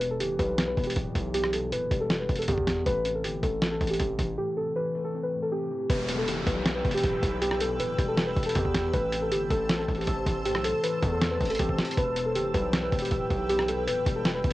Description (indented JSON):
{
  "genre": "hip hop, trap",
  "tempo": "158 BPM",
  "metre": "4/4",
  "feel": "half-time",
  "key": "E minor",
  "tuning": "A4 = 441 Hz",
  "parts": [
    { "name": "muted felt-like synth keys", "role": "melody", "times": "0.0-14.5 s", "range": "G4 to B4", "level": "-29 LUFS", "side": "equal", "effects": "chorus, cassette tape" },
    { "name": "dark concert grand piano", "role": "accompaniment", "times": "0.0-14.5 s", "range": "E2 to C4", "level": "-35 LUFS", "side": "left 5 dB", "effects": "cassette tape" },
    { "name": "distorted 808-style bass", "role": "bass", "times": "0.0-14.5 s", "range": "D1 to E2", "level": "-33 LUFS", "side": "equal", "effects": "distortion" },
    { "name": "dusty soul sampler-style drum kit", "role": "drums", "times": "0.0-14.5 s", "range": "hi-hat, kick drum, rim click, snare drum", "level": "-29 LUFS", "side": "equal", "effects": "overdrive" },
    { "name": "granular cloud pad", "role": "sustained chords", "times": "6.3-14.5 s", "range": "B4 to E6", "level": "-35 LUFS", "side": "right 1 dB", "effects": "built-in reverb, cassette tape, plate reverb" },
    { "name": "downlifter", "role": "sound effects", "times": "5.9-8.9 s", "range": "none", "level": "-37 LUFS", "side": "equal", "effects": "none" }
  ],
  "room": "light reverb",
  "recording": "home recording on cassette",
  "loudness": "-25 LUFS",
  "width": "side -16 dB against mid",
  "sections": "0.0-5.9 A section; 5.9-14.5 B section",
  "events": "break 4.4-5.9",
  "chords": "0.0 Em; 2.9 Am; 5.9 Em; 8.9 Am; 12.0 Em"
}